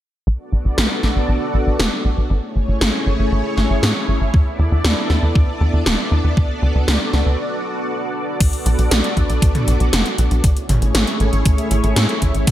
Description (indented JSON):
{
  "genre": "synthwave",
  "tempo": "118 BPM",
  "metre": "4/4",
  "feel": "straight",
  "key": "B dorian",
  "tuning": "A4 = 441 Hz",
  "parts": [
    { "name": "analog string pad", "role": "sustained chords", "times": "0.5-12.5 s", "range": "A3 to D5", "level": "-22 LUFS", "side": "equal", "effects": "ensemble chorus, sidechain pumping" },
    { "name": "tight sequencer bass", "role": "bass", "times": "0.3-12.5 s", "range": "E1 to A2", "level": "-17 LUFS", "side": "equal", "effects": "sidechain pumping" },
    { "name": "80s electronic pad drums", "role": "drums", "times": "0.8-12.5 s", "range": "crash cymbal, hi-hat, snare drum, toms", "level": "-21 LUFS", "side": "equal", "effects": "gated reverb on snare and toms, gated reverb" },
    { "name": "electronic kick drum", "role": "drums", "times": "4.3-12.5 s", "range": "none", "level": "-16 LUFS", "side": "equal", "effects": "overdrive" }
  ],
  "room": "light reverb, digital ambience",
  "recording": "none",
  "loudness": "-15 LUFS",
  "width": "side -13 dB against mid",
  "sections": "0.3-8.4 A section; 8.4-12.5 B section",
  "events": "filter sweep on analog synth bass 0.3-8.4; break 7.4-8.4",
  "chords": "0.3 Bm7; 2.3 Amaj7; 4.3 E7sus4; 6.4 D6; 8.4 Bm7; 10.4 Amaj7"
}